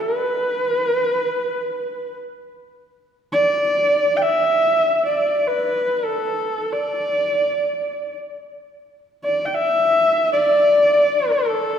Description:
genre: mongolian traditional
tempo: free time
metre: none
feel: none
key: unclear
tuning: A4 = 439 Hz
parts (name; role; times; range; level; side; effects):
- warm horsehead fiddle; solo; 0.0-11.8 s; A4 to G5; -17 LUFS; equal; none
room: wet concert hall reverb, RT60 2.3 s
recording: heard from further back in the room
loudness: -17 LUFS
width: side -8 dB against mid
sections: 0.0-11.8 A section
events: none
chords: none

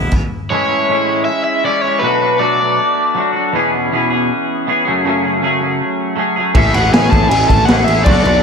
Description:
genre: indie rock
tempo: 159 BPM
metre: 4/4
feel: straight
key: A major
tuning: A4 = 438 Hz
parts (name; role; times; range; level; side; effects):
- twangy electric guitar; riff; 0.0-8.4 s; E2 to G#4; -15 LUFS; equal; double-tracked left and right, slapback echo
- fuzz picked electric bass; bass; 0.0-0.1, 6.5-8.4 s; A1 to B1; -16 LUFS; equal; overdrive
- raw garage drum kit; drums; 0.1-0.2, 6.5-8.3 s; crash cymbal, kick drum, snare drum; -14 LUFS; equal; none
- crunchy overdriven guitar; melody; 0.5-3.3, 6.6-8.4 s; B4 to A5; -16 LUFS; left 1 dB; tape echo
room: moderate lush hall reverb, RT60 2.4 s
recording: big arena sound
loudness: -12 LUFS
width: side -6 dB against mid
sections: 0.5-8.4 A section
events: none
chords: 0.0 E; 0.5 Amaj7; 2.0 Bm7; 3.5 E6; 4.9 F#madd9; 6.6 Amaj7

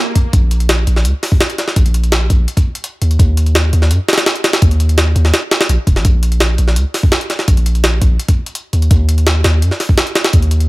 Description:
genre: drum and bass, jungle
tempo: 168 BPM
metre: 4/4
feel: straight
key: Bb minor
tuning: A4 = 440 Hz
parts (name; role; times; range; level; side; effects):
- jungle sampler-style drum kit; drums; 0.2-10.7 s; hi-hat, kick drum, snare drum; -13 LUFS; equal; studio reverb
- long sustained 808-style bass; bass; 0.3-10.7 s; Eb1 to Gb2; -12 LUFS; equal; none
room: digital ambience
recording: none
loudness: -11 LUFS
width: side -20 dB against mid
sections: 0.0-10.7 A section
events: none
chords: none

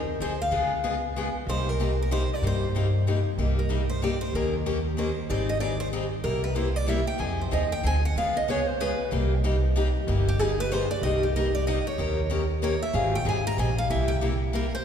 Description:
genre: acoustic string swing (jazz manouche)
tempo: 188 BPM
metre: 3/4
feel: swing 60% on 8ths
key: C minor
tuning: A4 = 440 Hz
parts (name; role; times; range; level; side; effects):
- picked steel-string acoustic guitar; melody; 0.0-14.8 s; G4 to Bb5; -30 LUFS; right 1 dB; none
- upright bass; bass; 0.0-14.7 s; G1 to G2; -27 LUFS; equal; none
- picked steel-string acoustic guitar; accompaniment; 0.2-14.7 s; C3 to Bb4; -29 LUFS; left 2 dB; none
room: wet church reverb, RT60 3.3 s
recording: recorded in a church or concert hall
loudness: -24 LUFS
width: side -8 dB against mid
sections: 0.0-3.4 A section; 3.4-11.0 B section; 11.0-14.8 B section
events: steel-string acoustic guitar solo 3.4-14.8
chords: 0.0 Fm7; 0.5 Db7; 1.5 Cm7; 4.3 Eb7; 5.3 Abmaj7; 6.3 C7; 7.2 Fm7; 8.2 Db7; 9.1 Cm7; 12.0 Eb7; 12.9 Abmaj9; 13.9 C7

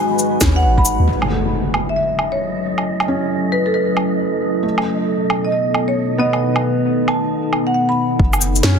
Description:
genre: future garage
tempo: 135 BPM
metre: 4/4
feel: swing 64% on 16ths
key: F# dorian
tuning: A4 = 440 Hz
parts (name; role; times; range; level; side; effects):
- marimba with medium hard mallets; melody; 0.0-8.2 s; A4 to B5; -22 LUFS; equal; vintage 12-bit sampler grit, dub echo
- felt-muted upright piano; accompaniment; 0.0-8.8 s; A3 to C#4; -26 LUFS; right 1 dB; sidechain pumping, tape echo
- deep dark ambient pad; sustained chords; 0.0-8.8 s; B2 to A5; -20 LUFS; equal; chorus, built-in reverb, vintage 12-bit sampler grit, sidechain pumping
- electronic shaker, snare drum, cabasa and woodblock; drums; 0.2-8.8 s; none; -20 LUFS; right 1 dB; overdrive
- soft 808-style bass; bass; 0.4-1.1, 8.2-8.8 s; F#1 to F#2; -16 LUFS; equal; sidechain pumping
- electronic kick drum; drums; 0.4-0.8, 8.2-8.3 s; none; -17 LUFS; equal; overdrive
- impact; sound effects; 1.1-2.9 s; none; -23 LUFS; left 1 dB; none
- wind-like tuned noise texture; texture; 1.8-8.2 s; D#5; -30 LUFS; right 3 dB; built-in reverb
room: moderate lush hall reverb, RT60 1.8 s, digital ambience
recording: dense, heavily limited modern master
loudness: -15 LUFS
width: side -6 dB against mid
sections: 0.0-1.1 A section; 1.1-8.2 B section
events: impact 1.1-2.9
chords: 0.0 G#m7; 1.1 F#m7; 4.6 B7; 8.2 F#m7

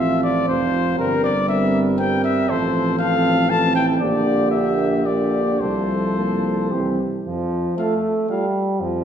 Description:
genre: classical, brass quintet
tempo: 106-121 BPM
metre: 3/4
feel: rubato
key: F major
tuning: A4 = 440 Hz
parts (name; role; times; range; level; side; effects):
- warm trumpet; melody; 0.0-8.5 s; Bb4 to A5; -23 LUFS; left 4 dB; none
- mellow flugelhorn; second line; 0.0-8.5 s; F4 to Bb4; -26 LUFS; right 5 dB; none
- clear trombone; accompaniment; 0.0-9.0 s; D3 to A3; -24 LUFS; right 1 dB; none
- mellow French horn; accompaniment; 0.0-8.5 s; A3 to F4; -24 LUFS; right 2 dB; none
- clear bass trombone; bass; 0.0-9.0 s; F1 to F2; -24 LUFS; equal; none
room: wet recital hall reverb, RT60 1.4 s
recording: heard from further back in the room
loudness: -17 LUFS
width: side -8 dB against mid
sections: 0.0-7.3 A section; 7.3-9.0 B section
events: none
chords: 0.0 F/A; 1.0 C5/G; 2.5 F/A; 4.0 Gm/Bb; 5.6 F/C; 6.7 C; 7.3 F

